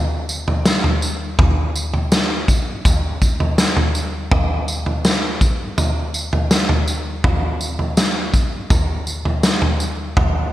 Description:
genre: dream pop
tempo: 82 BPM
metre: 4/4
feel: straight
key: none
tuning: none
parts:
  - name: raw garage drum kit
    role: drums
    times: 0.3-10.3 s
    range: kick drum, snare drum, tambourine, toms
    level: -16 LUFS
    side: equal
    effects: gated reverb
room: light reverb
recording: bright 1980s-style digital production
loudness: -16 LUFS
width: side -14 dB against mid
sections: 0.0-10.5 A section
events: none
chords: none

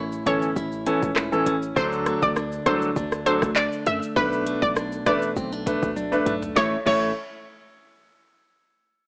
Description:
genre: dancehall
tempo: 100 BPM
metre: 4/4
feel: straight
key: unclear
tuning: A4 = 441 Hz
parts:
  - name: clean electric guitar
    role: arpeggios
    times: 0.0-7.1 s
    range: A2 to E4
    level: -32 LUFS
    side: equal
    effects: spring reverb
  - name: hard-hitting 808-style bass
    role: bass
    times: 0.0-7.1 s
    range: G1 to F#2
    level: -36 LUFS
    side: equal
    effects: none
  - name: afro-pop drum kit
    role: drums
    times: 0.1-7.0 s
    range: crash cymbal, handclaps, hi-hat, kick drum, rim click, shaker, snare drum, toms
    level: -31 LUFS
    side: equal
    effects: overdrive
  - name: analog pluck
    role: melody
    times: 0.3-7.1 s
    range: B4 to E5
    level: -27 LUFS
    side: equal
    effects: chorus, slapback echo
  - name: clear concert grand piano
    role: accompaniment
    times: 0.3-7.1 s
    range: E3 to C#5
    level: -27 LUFS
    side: equal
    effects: sidechain pumping
room: light reverb, digital ambience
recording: worn, warbling old tape, cassette tape, warbly pitch drift, small speaker sound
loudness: -24 LUFS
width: mono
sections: 0.0-6.6 A section; 6.6-9.0 B section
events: drum fill 6.0-6.6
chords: 0.0 A; 1.8 D; 4.2 Bm7; 6.6 A

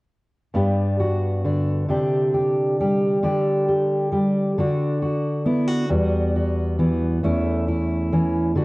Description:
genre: folk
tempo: 45 BPM (dotted quarters)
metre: 6/8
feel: straight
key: G major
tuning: A4 = 440 Hz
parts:
  - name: fingerpicked steel-string acoustic guitar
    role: accompaniment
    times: 0.5-8.6 s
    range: E2 to G4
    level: -19 LUFS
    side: equal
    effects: cassette tape
room: moderate spring reverb, RT60 1.6 s, small room reverb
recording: home recording on cassette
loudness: -19 LUFS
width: side -22 dB against mid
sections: 0.5-8.6 A section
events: none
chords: 0.5 G; 1.9 Csus2; 3.2 Dsus4; 4.6 Bm/D; 5.9 Emadd9; 7.2 A/E

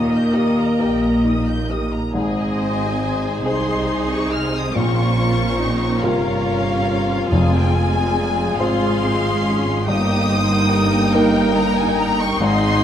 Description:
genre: cinematic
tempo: 47 BPM (dotted quarters)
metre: 6/8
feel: rubato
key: unclear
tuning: A4 = 441 Hz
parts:
  - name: rich studio violin section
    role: melody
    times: 0.0-12.8 s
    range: Bb4 to F6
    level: -25 LUFS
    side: left 3 dB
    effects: none
  - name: clear studio violin section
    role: second line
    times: 0.0-12.8 s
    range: G4 to G6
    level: -27 LUFS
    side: left 1 dB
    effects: none
  - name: rich studio viola section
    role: accompaniment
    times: 0.0-12.8 s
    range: Ab3 to Eb5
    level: -26 LUFS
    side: right 1 dB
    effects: none
  - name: warm grand piano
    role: accompaniment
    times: 0.0-12.8 s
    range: F1 to C5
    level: -23 LUFS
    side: left 1 dB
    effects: none
  - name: warm French horn section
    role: sustained chords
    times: 0.0-12.8 s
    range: Ab3 to F4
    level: -23 LUFS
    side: left 2 dB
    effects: none
  - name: warm studio cello section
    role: bass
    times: 0.0-12.8 s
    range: F2 to Eb3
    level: -24 LUFS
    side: right 3 dB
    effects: none
  - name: warm studio double bass section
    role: bass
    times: 0.0-12.8 s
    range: F1 to Eb2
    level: -25 LUFS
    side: right 2 dB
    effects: none
  - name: timpani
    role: percussion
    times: 7.3-8.6 s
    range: F2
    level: -20 LUFS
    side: right 1 dB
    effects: none
room: wet recital hall reverb, RT60 1.6 s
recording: none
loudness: -16 LUFS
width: side -9 dB against mid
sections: 0.0-2.1 A section; 2.1-12.8 B section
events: none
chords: 0.0 Eb; 2.1 Ab; 4.8 Bbmadd9; 7.3 Fm; 9.9 Eb/G

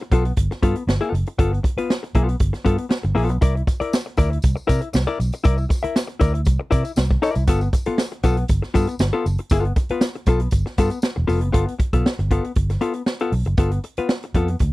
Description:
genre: funk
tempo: 118 BPM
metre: 4/4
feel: straight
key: G mixolydian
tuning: A4 = 440 Hz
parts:
  - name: hollow-body jazz guitar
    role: accompaniment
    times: 0.0-14.7 s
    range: B3 to E5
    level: -23 LUFS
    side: left 4 dB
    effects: none
  - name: swinging big-band drum kit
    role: drums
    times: 0.0-14.7 s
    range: hi-hat, kick drum, snare drum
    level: -20 LUFS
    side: right 1 dB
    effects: none
  - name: vintage muted fingered electric bass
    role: bass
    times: 0.1-14.7 s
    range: E1 to C3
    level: -21 LUFS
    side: equal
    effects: none
  - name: tambourine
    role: percussion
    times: 3.4-11.4 s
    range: none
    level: -40 LUFS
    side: left 2 dB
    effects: none
room: little or no reverb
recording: dry, close 1970s-style studio recording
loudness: -18 LUFS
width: side -19 dB against mid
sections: 0.0-11.5 A section; 11.5-14.7 B section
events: none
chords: 0.0 G9; 3.4 C9; 7.5 G9

